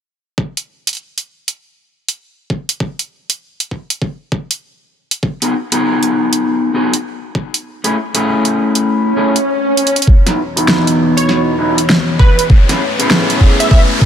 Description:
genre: glitch hop.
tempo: 99 BPM.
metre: 4/4.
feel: swing 63% on 16ths.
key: unclear.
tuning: A4 = 439 Hz.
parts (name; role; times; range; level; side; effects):
electronic kick drum; drums; 0.4-14.1 s; none; -10 LUFS; equal; overdrive, high-pass filter on kick, high-pass filter on room.
pop drum kit; drums; 0.6-13.7 s; hi-hat, snare drum; -15 LUFS; right 1 dB; overdrive.
electric guitar at the edge of break-up; stabs; 5.4-14.1 s; A3 to G#4; -15 LUFS; left 1 dB; vintage 12-bit sampler grit, sidechain pumping, low-pass filter, ping-pong delay.
swell and riser; sound effects; 9.0-14.1 s; none; -18 LUFS; equal; none.
dark analog pad; sustained chords; 10.5-14.1 s; E3 to D#5; -18 LUFS; equal; chorus, sidechain pumping.
plucky unison lead; melody; 11.2-13.8 s; B4 to E5; -19 LUFS; right 2 dB; analog chorus, ping-pong delay.
room: light reverb.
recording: none.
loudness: -12 LUFS.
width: side -9 dB against mid.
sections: 0.4-10.1 A section; 10.1-14.1 B section.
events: kick drops out 7.7-10.1; swell 9.0-10.1; drum fill 9.8-10.1; build-up 10.1-14.1; riser 10.1-14.1; filter sweep on clean electric guitar 10.1-14.1.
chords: 0.4 N.C.; 5.2 B6; 7.7 Amaj7; 10.1 C#m11; 12.5 Amaj9.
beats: | 0.38 0.99 1.59 2.20 | 2.81 3.41 4.02 4.62 | 5.23 5.84 6.44 7.05 | 7.65 8.26 8.87 9.47 | 10.08 10.68 11.29 11.90 | 12.50 13.11 13.71.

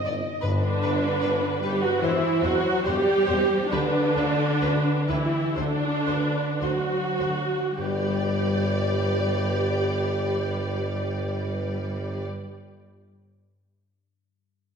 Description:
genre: classical, slow romantic movement for symphony orchestra.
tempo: 49-78 BPM.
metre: 4/4.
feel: rubato.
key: G major.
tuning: A4 = 441 Hz.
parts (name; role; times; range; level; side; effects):
dark symphonic violin section; second line; 0.0-12.3 s; G4 to Eb5; -32 LUFS; left 1 dB; none.
warm symphonic viola section; accompaniment; 0.0-12.2 s; D4 to G4; -26 LUFS; right 1 dB; none.
concert harp; arpeggios; 0.0-12.6 s; G2 to G5; -31 LUFS; left 3 dB; none.
rich symphonic cello section; bass; 0.0-12.2 s; D3 to G3; -32 LUFS; right 1 dB; none.
warm studio double bass section; bass; 0.0-12.2 s; D2 to G2; -33 LUFS; right 2 dB; none.
warm symphonic violin section; melody; 0.1-12.2 s; B4 to D5; -35 LUFS; left 3 dB; none.
warm tuba; bass; 0.1-12.2 s; E1 to D2; -33 LUFS; right 2 dB; none.
timpani; percussion; 0.4-1.6, 7.8-12.3 s; G2; -31 LUFS; left 1 dB; none.
room: wet recital hall reverb, RT60 1.7 s.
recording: minimal, uncompressed stereo recording.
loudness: -22 LUFS.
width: side -6 dB against mid.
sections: 0.0-7.8 A section; 7.8-12.3 B section.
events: slowing down 0.0-7.8.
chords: 0.4 G; 2.0 C/E; 3.7 D13sus4; 5.6 D7; 7.8 G.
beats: | 0.43 1.22 2.02 2.85 | 3.71 4.62 5.57 6.62 | 7.78 8.89 10.01 11.13.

